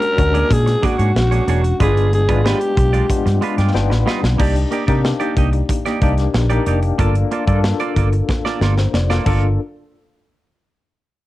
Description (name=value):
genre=polished 1980s jazz-funk pop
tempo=92 BPM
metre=4/4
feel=straight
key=G minor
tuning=A4 = 441 Hz
part: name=breathy alto saxophone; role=melody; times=0.0-3.4 s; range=F#4 to Bb4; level=-19 LUFS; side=equal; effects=cassette tape, plate reverb
part: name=tine electric piano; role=accompaniment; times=0.0-9.6 s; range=Ab3 to B5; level=-23 LUFS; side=left 7 dB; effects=fast tremolo, wide subtle chorus, cassette tape, plate reverb
part: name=semi-hollow electric guitar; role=riff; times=0.0-9.5 s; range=G3 to Eb5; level=-23 LUFS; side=right 7 dB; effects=lush chorus, cassette tape
part: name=modern studio drum kit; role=drums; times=0.0-9.4 s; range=crash cymbal, hi-hat, kick drum, snare drum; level=-21 LUFS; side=equal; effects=cassette tape
part: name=vintage muted fingered electric bass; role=bass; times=0.2-9.6 s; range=E1 to C3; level=-16 LUFS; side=equal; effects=none
room=light reverb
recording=home recording on cassette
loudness=-14 LUFS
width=side -16 dB against mid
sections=0.0-4.4 A section; 4.4-9.6 B section; 9.6-11.3 C section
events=tine electric piano fill 3.1-4.4; drum fill 3.7-4.4, 8.3-9.6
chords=0.0 Bb7alt; 1.8 G7b9; 3.7 G7b13; 4.4 Cm9; 7.0 Gm9; 9.6 N.C.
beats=0.50 1.15 | 1.80 2.45 3.10 3.75 | 4.39 5.04 5.69 6.34 | 6.99 7.64 8.29 8.94 | 9.59